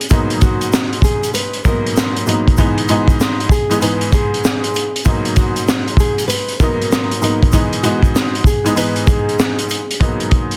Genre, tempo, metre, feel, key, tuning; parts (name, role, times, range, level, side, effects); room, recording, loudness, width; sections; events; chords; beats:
hip hop, boom-bap hip-hop; 97 BPM; 4/4; swing 62% on 16ths; G# minor; A4 = 440 Hz
nylon-string guitar; melody; 0.0-10.0 s; F#4 to B4; -25 LUFS; equal; tape echo
crunchy breakbeat drum kit; drums; 0.0-10.6 s; hi-hat, kick drum, snare drum; -18 LUFS; equal
warm upright piano; accompaniment; 0.1-10.6 s; G#2 to D#4; -21 LUFS; equal
tube shaker; percussion; 0.1-9.9 s; -34 LUFS; equal
light reverb, small room ambience; dense, heavily limited modern master; -15 LUFS; mono
0.0-10.0 A section
0.1 G#m7; 2.6 Emaj9/G#; 5.1 G#m7; 7.5 Emaj9/G#; 10.0 G#m7
| 0.11 0.73 1.35 1.97 | 2.58 3.20 3.82 4.44 | 5.06 5.68 6.29 6.91 | 7.53 8.15 8.77 9.39 | 10.01